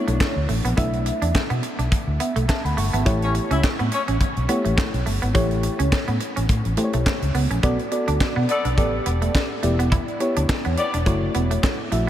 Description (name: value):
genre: early-eighties boogie funk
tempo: 105 BPM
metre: 4/4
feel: swing 56% on 16ths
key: B minor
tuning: A4 = 440 Hz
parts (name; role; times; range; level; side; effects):
- mellow FM electric piano; accompaniment; 0.0-12.1 s; A3 to C#6; -26 LUFS; left 1 dB; chorus
- electric guitar at the edge of break-up; riff; 0.0-12.1 s; A3 to E4; -28 LUFS; right 4 dB; wide subtle chorus
- vintage muted fingered electric bass; bass; 0.1-12.1 s; E1 to B2; -23 LUFS; equal; none
- tight funk drum kit; drums; 0.1-12.1 s; handclaps, hi-hat, kick drum, snare drum; -24 LUFS; equal; none
- clear horn section; second line; 3.2-4.0, 8.5-11.0 s; B3 to E5; -29 LUFS; left 2 dB; none
room: moderate huge ambient reverb, RT60 4.1 s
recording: dreamy mix soaked in reverb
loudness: -19 LUFS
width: side -11 dB against mid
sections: 0.0-7.6 A section; 7.6-12.1 B section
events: FM electric piano fill 1.9-3.1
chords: 0.0 Bm11; 3.1 A7; 7.6 Bm7; 8.8 A9sus4; 9.6 Em7; 11.1 F#m7